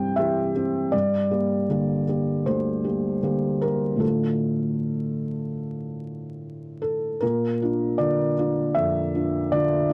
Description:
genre	neoclassical minimalist piano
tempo	74-80 BPM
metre	4/4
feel	rubato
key	unclear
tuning	A4 = 445 Hz
part	felt-muted upright piano	solo	0.0-9.9 s	D2 to G5	-24 LUFS	equal	none
room	light reverb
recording	dry, close 1970s-style studio recording, vinyl crackle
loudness	-24 LUFS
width	mono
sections	0.0-7.2 A section; 7.2-9.9 A section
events	none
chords	0.0 C; 0.9 Gm; 4.0 Dm/A; 7.2 Bb

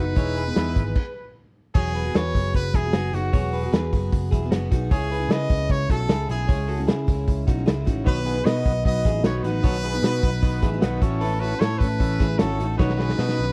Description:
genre	jangly indie pop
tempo	152 BPM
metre	4/4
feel	straight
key	unclear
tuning	A4 = 440 Hz
part	brilliant trumpet	melody	0.0-13.5 s	F#4 to D#5	-31 LUFS	equal	slapback echo
part	overdriven combo organ	accompaniment	0.0-0.8, 8.0-13.5 s	B3 to D#5	-34 LUFS	equal	none
part	picked plugged-in steel-string acoustic guitar	accompaniment	0.0-13.5 s	A2 to G#4	-33 LUFS	equal	none
part	semi-hollow electric guitar	arpeggios	0.0-13.5 s	B3 to C#5	-34 LUFS	equal	none
part	vintage muted picked electric bass	bass	0.0-13.5 s	E1 to C#3	-28 LUFS	equal	none
part	raw garage drum kit	drums	0.2-13.4 s	crash cymbal, hi-hat, kick drum, snare drum	-24 LUFS	equal	none
room	little or no reverb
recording	dry, close 1970s-style studio recording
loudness	-23 LUFS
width	mono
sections	0.0-1.8 A section; 1.8-13.5 B section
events	stop 1.0-1.8; drum fill 12.8-13.5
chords	0.0 Emaj7; 4.9 C#m; 11.0 A; 12.8 Badd9

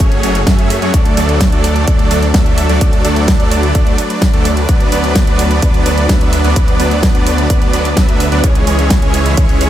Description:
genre	EDM, festival progressive house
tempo	128 BPM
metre	4/4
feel	straight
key	unclear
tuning	A4 = 442 Hz
part	supersaw pad	sustained chords	0.0-9.7 s	F#3 to E5	-21 LUFS	right 1 dB	sidechain pumping
part	supersaw chords	riff	0.0-9.7 s	E3 to E5	-16 LUFS	right 1 dB	cassette tape, sidechain pumping, tape echo
part	wide detuned saw bass	bass	0.0-9.7 s	F#1 to F#2	-16 LUFS	equal	chorus, sidechain pumping
part	electronic kick drum	drums	0.0-9.5 s	none	-12 LUFS	equal	none
part	pop drum kit	drums	0.0-9.7 s	hi-hat, snare drum	-19 LUFS	equal	none
room	little or no reverb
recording	none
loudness	-10 LUFS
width	side -12 dB against mid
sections	0.0-9.7 A section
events	none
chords	0.0 F#madd9; 0.9 D; 4.7 Bm/D; 8.4 C#m

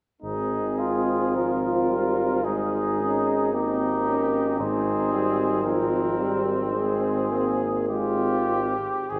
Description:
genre	classical, hymn-like piece for brass band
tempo	49-57 BPM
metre	4/4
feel	rubato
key	Ab major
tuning	A4 = 439 Hz
part	warm cornet	melody	0.2-9.2 s	G4 to Bb4	-32 LUFS	equal	none
part	warm flugelhorn	second line	0.2-9.2 s	Ab3 to F4	-31 LUFS	equal	none
part	dark trombone section	accompaniment	0.2-9.2 s	Eb3 to Eb4	-33 LUFS	equal	none
part	warm euphonium	accompaniment	0.2-9.2 s	C3 to Bb3	-31 LUFS	equal	none
part	warm tuba	bass	0.2-9.2 s	Ab1	-31 LUFS	equal	none
room	wet concert hall reverb, RT60 2.4 s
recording	heard from further back in the room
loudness	-24 LUFS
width	mono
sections	0.2-9.1 A section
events	none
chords	0.2 Ab

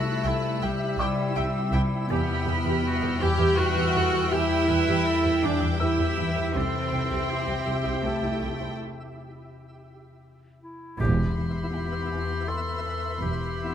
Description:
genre	cinematic, suspense film score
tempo	81 BPM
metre	3/4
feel	straight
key	unclear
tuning	A4 = 441 Hz
part	bright clarinet	second line	0.0-13.7 s	C4 to B4	-34 LUFS	left 1 dB	none
part	dark chamber violin section	second line	0.0-13.0 s	E5 to G6	-34 LUFS	right 5 dB	none
part	mellow French horn section	sustained chords	0.0-8.7 s	G3 to E5	-35 LUFS	left 6 dB	none
part	twinkling granular texture	sustained chords	0.0-13.7 s	B3 to E5	-37 LUFS	right 1 dB	built-in reverb
part	marimba with medium hard mallets	riff	0.0-13.7 s	E2 to C4	-31 LUFS	left 4 dB	none
part	warm symphonic cello section	bass	0.0-13.7 s	E2 to G4	-28 LUFS	right 2 dB	none
part	warm symphonic violin section	texture	0.0-6.1, 11.0-13.7 s	B5 to F#6	-38 LUFS	left 2 dB	none
part	dark studio violin section	melody	0.2-13.0 s	G5	-36 LUFS	equal	none
part	dark symphonic viola section	accompaniment	0.2-13.0 s	E4 to E5	-36 LUFS	right 1 dB	none
part	rich symphonic double bass section	bass	0.2-13.7 s	E1 to E2	-30 LUFS	right 3 dB	none
part	felt-muted upright piano	texture	1.0-13.7 s	D5 to E6	-37 LUFS	left 1 dB	none
part	impact	sound effects	11.0-13.2 s	none	-36 LUFS	equal	none
room	moderate concert hall reverb, RT60 1.9 s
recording	close, detailed microphones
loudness	-23 LUFS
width	side -9 dB against mid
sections	0.0-11.0 A section; 11.0-13.7 B section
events	break 8.8-11.0; band accent 11.0-11.7; impact 11.0-13.2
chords	0.0 C; 2.1 Em; 6.5 C; 11.0 Em

